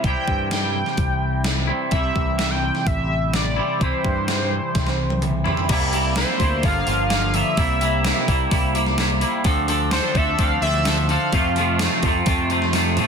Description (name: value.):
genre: indie rock.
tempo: 128 BPM.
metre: 4/4.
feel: straight.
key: unclear.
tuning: A4 = 440 Hz.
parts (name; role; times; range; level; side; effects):
octave-doubled lead; melody; 0.0-11.8 s; C5 to G5; -25 LUFS; equal; chorus, tape echo.
twangy electric guitar; riff; 0.0-13.1 s; F2 to A4; -22 LUFS; equal; double-tracked left and right.
modern bright picked electric bass; bass; 0.0-13.0 s; G1 to G2; -24 LUFS; equal; none.
gated 80s digital drum machine; drums; 0.0-13.1 s; crash cymbal, hi-hat, kick drum, snare drum, toms; -23 LUFS; equal; gated reverb, gated reverb snare, overdrive.
room: little or no reverb.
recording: dense, heavily limited modern master.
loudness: -18 LUFS.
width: side -6 dB against mid.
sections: 0.0-5.7 A section; 5.7-13.1 B section.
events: drum fill 4.8-5.7, 12.7-13.1.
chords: 0.0 C; 5.7 C7; 6.6 Gm7; 7.6 C7; 9.5 Dm7; 11.3 F.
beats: | 0.04 0.52 0.99 1.46 | 1.93 2.40 2.87 3.35 | 3.82 4.29 4.76 5.23 | 5.70 6.17 6.64 7.11 | 7.58 8.05 8.52 8.99 | 9.46 9.93 10.40 10.87 | 11.34 11.81 12.28 12.75.